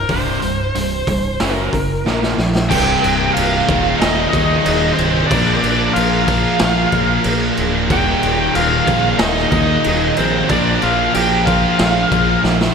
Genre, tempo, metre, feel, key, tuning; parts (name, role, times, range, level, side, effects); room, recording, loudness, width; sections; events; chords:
hard rock; 92 BPM; 4/4; straight; A4 = 441 Hz
biting lead guitar; melody; 0.0-12.4 s; C5 to G5; -19 LUFS; equal; overdrive
overdriven semi-hollow guitar; riff; 0.0-12.7 s; C2 to Bb3; -22 LUFS; left 11 dB; wide subtle chorus
tight distorted guitar; riff; 0.0-12.7 s; C2 to Bb3; -22 LUFS; right 10 dB; distortion
modern bright fingered electric bass; bass; 0.0-12.7 s; C1 to Eb2; -22 LUFS; equal
raw garage drum kit; drums; 0.1-12.7 s; crash cymbal, hi-hat, kick drum, snare drum; -20 LUFS; equal; gated reverb
nasal lead guitar with a parked wah; second line; 2.7-12.4 s; C4 to G4; -24 LUFS; right 3 dB; overdrive, digital delay
scooped high-gain guitar; riff; 2.7-12.7 s; C2 to Bb4; -22 LUFS; equal; distortion
moderate lush hall reverb, RT60 2.5 s; bright 1980s-style digital production; -13 LUFS; side -6 dB against mid
0.0-2.7 A section; 2.7-12.7 B section
drum fill 2.1-2.7, 12.4-12.7
0.0 C5; 1.4 F#5; 2.1 Bb5; 2.7 Cm; 3.7 Eb; 5.3 Bb; 7.9 Eb; 10.5 Bb